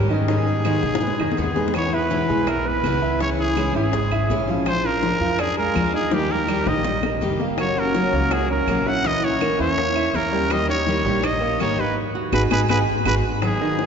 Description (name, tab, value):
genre	latin, Cuban son and guajira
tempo	164 BPM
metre	4/4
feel	straight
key	G# minor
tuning	A4 = 439 Hz
part	picked steel-string acoustic guitar	accompaniment	0.0-13.9 s	B2 to G#4	-25 LUFS	left 2 dB	none
part	warm concert grand piano	arpeggios	0.0-13.9 s	D#3 to F#5	-25 LUFS	right 3 dB	none
part	upright bass	bass	0.0-13.2 s	F#1 to B2	-26 LUFS	equal	none
part	growling trumpet	melody	0.1-13.9 s	G4 to F#5	-24 LUFS	right 1 dB	none
part	bongos	percussion	0.1-13.9 s	none	-29 LUFS	left 4 dB	none
part	claves	percussion	0.6-13.6 s	none	-36 LUFS	right 6 dB	none
part	flamenco guitar	second line	12.2-13.4 s	F#4 to G#4	-29 LUFS	right 4 dB	none
room	wet cathedral reverb, RT60 4.2 s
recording	recorded in a church or concert hall, nothing above 7.8 kHz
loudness	-18 LUFS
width	side -6 dB against mid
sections	0.0-1.7 A section; 1.7-13.4 B section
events	drum fill 0.8-1.7, 6.1-7.6, 12.5-13.4; band accent 12.0-13.4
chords	0.3 G#m; 1.7 E; 3.2 C#m; 4.7 A#7; 6.1 D#; 7.6 F#; 9.0 A#dim; 10.5 D#; 12.0 G#m7